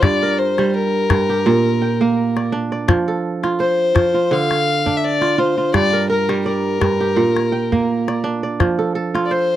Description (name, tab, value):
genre	west african traditional, West African string and xylophone music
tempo	84 BPM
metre	4/4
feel	swing 54% on 16ths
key	unclear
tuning	A4 = 440 Hz
part	warm fiddle	melody	0.0-9.6 s	Bb4 to F5	-19 LUFS	left 4 dB	none
part	kora	arpeggios	0.0-9.6 s	G2 to G5	-18 LUFS	right 4 dB	none
part	calabash	percussion	0.0-9.3 s	none	-19 LUFS	left 4 dB	none
room	little or no reverb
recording	dry, close 1970s-style studio recording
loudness	-15 LUFS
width	side -12 dB against mid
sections	0.0-9.6 A section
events	none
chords	0.0 Gm; 1.5 Bb; 2.9 F; 4.3 Dm; 5.7 Gm; 7.2 Bb; 8.6 F